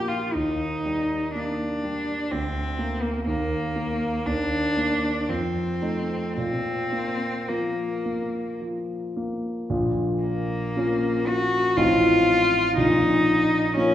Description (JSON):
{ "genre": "classical, romantic duo for cello and grand piano", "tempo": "53-63 BPM", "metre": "3/4", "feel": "rubato", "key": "Bb major, Bb minor from 9.7 s", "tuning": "A4 = 440 Hz", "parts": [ { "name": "rich cello", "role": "melody", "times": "0.0-13.9 s", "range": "Bb3 to Gb4", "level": "-24 LUFS", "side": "left 1 dB", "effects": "none" }, { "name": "warm concert grand piano", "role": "accompaniment", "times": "0.0-13.9 s", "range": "A1 to Eb4", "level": "-25 LUFS", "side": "equal", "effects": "none" } ], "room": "wet recital hall reverb, RT60 1.6 s", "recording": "heard from further back in the room", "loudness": "-22 LUFS", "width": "side -11 dB against mid", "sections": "0.0-9.7 A section; 9.7-13.9 B section", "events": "none", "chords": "0.4 Eb; 2.3 Bb/D; 3.3 Eb5; 5.3 F7; 6.4 Bb5; 9.7 Bbm; 11.8 F7/A; 12.8 Bbm", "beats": "| 0.35 1.36 2.33 | 3.28 4.27 5.30 | 6.37 7.49 8.61 | 9.70 10.75 11.76 | 12.77 13.77" }